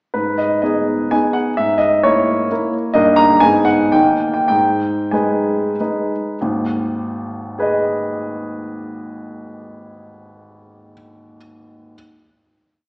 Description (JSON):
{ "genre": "classical, romantic triple-time dance for piano with dotted rhythms", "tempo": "91-137 BPM", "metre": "3/4", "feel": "rubato", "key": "G# minor", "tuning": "A4 = 440 Hz", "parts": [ { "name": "warm grand piano", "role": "solo", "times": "0.1-12.0 s", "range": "G#1 to A#5", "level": "-14 LUFS", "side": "equal", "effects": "none" } ], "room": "wet recital hall reverb, RT60 1.8 s", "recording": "heard from further back in the room, small speaker sound", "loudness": "-14 LUFS", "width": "side -33 dB against mid", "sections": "0.1-6.4 A section; 6.4-9.9 final chord", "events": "slowing down 2.3-6.4", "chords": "0.1 G#m; 1.6 A#m7b5/G#; 2.9 D#/G; 3.4 G#m; 3.9 D#; 4.5 G#m", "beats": "| 0.14 0.64 1.13 | 1.57 2.03 2.50 | 2.95 3.42 3.94 | 4.50 5.14 5.79 | 6.41 6.99 7.58 | 8.15 8.74 9.33" }